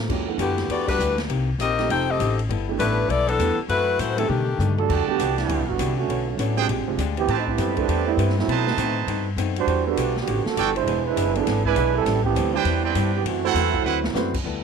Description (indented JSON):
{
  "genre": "jazz, big band swing",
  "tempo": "201 BPM",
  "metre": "4/4",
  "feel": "swing 62% on 8ths",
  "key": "G major, E minor from 4.9 s",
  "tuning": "A4 = 440 Hz",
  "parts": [
    { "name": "clear upright piano", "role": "accompaniment", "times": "0.0-14.3 s", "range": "Eb3 to F#5", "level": "-29 LUFS", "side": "right 12 dB", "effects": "none" },
    { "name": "upright bass", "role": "bass", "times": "0.0-14.6 s", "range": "E1 to B2", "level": "-25 LUFS", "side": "left 1 dB", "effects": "none" },
    { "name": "archtop guitar, miked and amplified", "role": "accompaniment", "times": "0.1-14.6 s", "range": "F#2 to C#5", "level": "-31 LUFS", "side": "left 14 dB", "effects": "none" },
    { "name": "swinging big-band drum kit", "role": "drums", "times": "0.1-14.4 s", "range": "crash cymbal, hi-hat, kick drum, ride cymbal, snare drum, toms", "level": "-32 LUFS", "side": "left 2 dB", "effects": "none" },
    { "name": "clear saxophone section", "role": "melody", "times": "0.4-4.8 s", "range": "D3 to G5", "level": "-22 LUFS", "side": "left 4 dB", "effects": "none" },
    { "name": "clear trombone section", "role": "second line", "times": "4.8-14.2 s", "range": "D3 to C5", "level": "-24 LUFS", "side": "right 11 dB", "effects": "tape echo" },
    { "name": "brilliant trumpet section", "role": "stabs", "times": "4.9-14.0 s", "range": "C4 to A5", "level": "-26 LUFS", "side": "right 11 dB", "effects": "none" }
  ],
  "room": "light reverb, small room ambience",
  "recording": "1960s-style stereo with parts hard left and right",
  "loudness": "-20 LUFS",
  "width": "side -6 dB against mid",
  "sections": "0.0-4.9 A section; 4.9-14.4 B section",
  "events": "band accent 0.8; drum fill 4.3-4.9, 13.9; trombone section solo 4.9-14.4",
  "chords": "0.1 Em11; 1.3 Cm7; 1.9 F9; 2.5 G69; 3.7 F#m7b5; 4.3 B7alt; 4.9 Em11; 6.1 Bm9; 6.7 A#13; 7.3 Am9; 8.5 B7b9; 9.7 Em11; 10.9 E7; 12.1 Am11; 13.3 F#m7b5; 13.9 D13",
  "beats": "| 0.09 0.39 0.69 0.99 | 1.29 1.59 1.89 2.19 | 2.49 2.79 3.09 3.39 | 3.69 3.99 4.29 4.59 | 4.89 5.19 5.49 5.79 | 6.09 6.39 6.69 6.99 | 7.29 7.59 7.88 8.18 | 8.48 8.78 9.08 9.38 | 9.68 9.97 10.27 10.57 | 10.87 11.17 11.46 11.76 | 12.06 12.36 12.66 12.96 | 13.25 13.55 13.85 14.15 | 14.45"
}